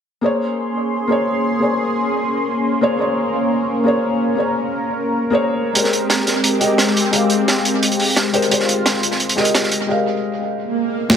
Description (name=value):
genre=liquid drum and bass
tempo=174 BPM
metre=4/4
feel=straight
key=Bb dorian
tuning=A4 = 440 Hz
part: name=felt-muted upright piano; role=accompaniment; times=0.2-11.2 s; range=Ab3 to F5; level=-19 LUFS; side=left 2 dB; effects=tape echo
part: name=warm analog pad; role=sustained chords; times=0.2-9.9 s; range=Ab3 to C6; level=-20 LUFS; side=equal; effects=chorus
part: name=crunchy breakbeat drum kit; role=drums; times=5.8-9.8 s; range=hi-hat, snare drum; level=-18 LUFS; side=right 1 dB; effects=high-pass filter on hats, high-pass filter on snare, high-pass filter on room, tape echo
part: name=swell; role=sound effects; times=10.7-11.2 s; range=none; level=-21 LUFS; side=right 7 dB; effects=none
part: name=electronic snare drum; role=drums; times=11.1-11.2 s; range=none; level=-9 LUFS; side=equal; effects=overdrive
room=moderate plate reverb, RT60 1.1 s, studio ambience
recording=echo-heavy mix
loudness=-15 LUFS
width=side -8 dB against mid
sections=0.2-11.2 A section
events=break 9.9-11.2; swell 10.7-11.2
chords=0.2 Bbm9; 5.8 Abmaj9